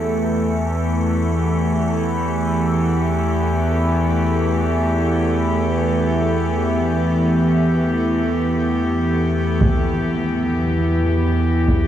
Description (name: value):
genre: dark ambient drone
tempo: free time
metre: none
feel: none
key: E minor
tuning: A4 = 440 Hz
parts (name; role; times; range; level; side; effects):
- warm studio cello section; sustained chords; 0.0-11.9 s; E3 to G4; -22 LUFS; equal; none
- analog drone; drone; 0.0-11.9 s; E2 to E3; -19 LUFS; equal; chorus
- icy glass pad; texture; 0.0-9.6 s; A3 to A4; -26 LUFS; left 1 dB; chorus, built-in reverb
- solo taiko drums; percussion; 9.6-11.9 s; none; -22 LUFS; right 1 dB; low-pass filter on perc
room: wet huge ambient reverb, RT60 8.3 s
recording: dark, warm production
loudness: -16 LUFS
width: side -10 dB against mid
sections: 0.0-9.6 A section; 9.6-11.9 B section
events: fade-in on cello section 0.0-9.6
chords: 0.0 Em